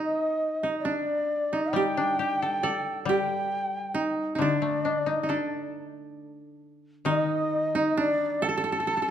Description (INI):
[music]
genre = japanese traditional, Japanese chamber music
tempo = 67 BPM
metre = 4/4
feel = rubato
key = unclear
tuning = A4 = 440 Hz
[part]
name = breathy long shakuhachi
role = melody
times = 0.0-9.1 s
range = D5 to A5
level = -28 LUFS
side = equal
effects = none
[part]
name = koto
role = second line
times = 0.0-9.1 s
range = D4 to A4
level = -29 LUFS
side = right 3 dB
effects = none
[part]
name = koto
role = accompaniment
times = 1.7-9.1 s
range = D3 to D5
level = -31 LUFS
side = left 7 dB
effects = none
[sound]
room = moderate recital hall reverb, RT60 1.4 s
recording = dark, warm production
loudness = -24 LUFS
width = side -10 dB against mid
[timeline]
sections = 0.0-9.1 A section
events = none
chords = none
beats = 0.38 1.29 2.19 | 3.07 3.96 4.84 5.73 | 6.62 7.52 8.43